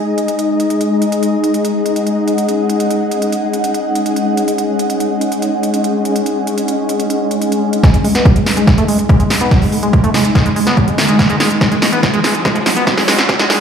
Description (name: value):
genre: psychedelic trance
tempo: 143 BPM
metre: 4/4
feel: straight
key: unclear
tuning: A4 = 440 Hz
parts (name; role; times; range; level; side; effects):
- swarming drone; sustained chords; 0.0-13.6 s; G#3 to D#4; -18 LUFS; left 1 dB; built-in reverb, sidechain pumping
- ethereal airy pad; texture; 0.0-13.6 s; D#4 to G#5; -19 LUFS; equal; ensemble chorus, built-in reverb, sidechain pumping
- big-room dance drum kit; drums; 0.2-13.6 s; hi-hat, snare drum; -18 LUFS; equal; none
- liquid acid bass; riff; 7.8-13.6 s; F#3 to B3; -16 LUFS; equal; chorus, auto-pan, sidechain pumping, dub echo
- electronic kick drum; drums; 7.8-13.4 s; none; -12 LUFS; equal; none
- riser; sound effects; 8.9-13.6 s; none; -21 LUFS; equal; none
room: moderate plate reverb, RT60 2.0 s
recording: played on a big sound system in a bare room, large studio reverb, high-pass filter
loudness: -12 LUFS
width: side -7 dB against mid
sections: 0.0-7.8 A section; 7.8-13.6 B section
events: build-up 7.8-13.6; drum fill 7.8-13.6; filter sweep on acid bass 7.8-13.6; filter sweep on synth drone 7.8-13.6; filter sweep 7.8-13.6; riser 8.9-13.6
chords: 0.0 G#5